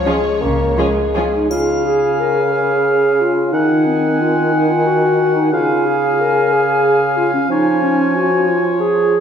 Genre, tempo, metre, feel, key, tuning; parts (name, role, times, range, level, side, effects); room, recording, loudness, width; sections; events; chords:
classical, orchestral ballroom waltz; 158-198 BPM; 3/4; rubato; Db major; A4 = 440 Hz
muted studio violin section; melody; 0.0-1.2 s; Db5; -25 LUFS; left 5 dB
mellow bassoon; accompaniment; 0.0-9.2 s; Db3 to Bb3; -18 LUFS; equal
muted studio violin section; second line; 0.1-1.2 s; F4 to Ab4; -26 LUFS; left 1 dB
muted studio viola section; accompaniment; 0.1-1.2 s; F3 to Db4; -25 LUFS; right 2 dB
muted studio cello section; bass; 0.4-0.7 s; Db3; -27 LUFS; equal
muted studio double bass section; bass; 0.4-0.7 s; Db2; -24 LUFS; right 1 dB
dark clarinet; second line; 1.3-9.2 s; C4 to Bb4; -16 LUFS; right 1 dB
clear oboe; second line; 1.5-9.2 s; Db5 to Gb5; -20 LUFS; right 1 dB
silver concert flute; second line; 1.5-9.2 s; Ab5; -22 LUFS; left 4 dB
triangle; percussion; 1.5-2.2 s; -33 LUFS; left 4 dB
wet scoring stage reverb, RT60 2.0 s; heard from further back in the room; -13 LUFS; side -8 dB against mid
0.0-1.5 A section; 1.5-9.2 A section
0.0 Db; 3.5 Ab7(no3)/Eb; 5.5 Db; 7.5 Db/F